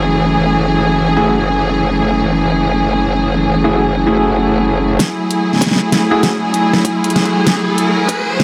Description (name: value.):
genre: glitch hop.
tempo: 97 BPM.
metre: 4/4.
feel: swing 62% on 16ths.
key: F# minor.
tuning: A4 = 438 Hz.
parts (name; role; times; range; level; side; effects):
rich studio string section; sustained chords; 0.0-8.4 s; E3 to G#4; -17 LUFS; equal; sidechain pumping.
warm concert grand piano; stabs; 0.0-6.3 s; A3 to G#4; -22 LUFS; equal; sidechain pumping, analog delay.
growl bass; bass; 0.0-5.0 s; F#1; -19 LUFS; equal; chorus, overdrive.
electronic kick drum; drums; 5.0-8.2 s; none; -24 LUFS; equal; high-pass filter on kick, studio reverb.
pop drum kit; drums; 5.0-8.4 s; hi-hat, rim click, snare drum; -19 LUFS; equal; studio reverb.
riser; sound effects; 6.1-8.4 s; none; -26 LUFS; equal; none.
room: wet huge ambient reverb, RT60 7.7 s.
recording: dreamy mix soaked in reverb, vinyl crackle.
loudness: -14 LUFS.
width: mono.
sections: 0.0-5.0 A section; 5.0-8.4 B section.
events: build-up 5.0-8.4; drum fill 5.0-8.4; riser 6.1-8.4.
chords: 0.0 F#m9.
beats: | 0.05 0.67 1.29 1.91 | 2.52 3.14 3.76 4.38 | 5.00 5.62 6.24 6.85 | 7.47 8.09.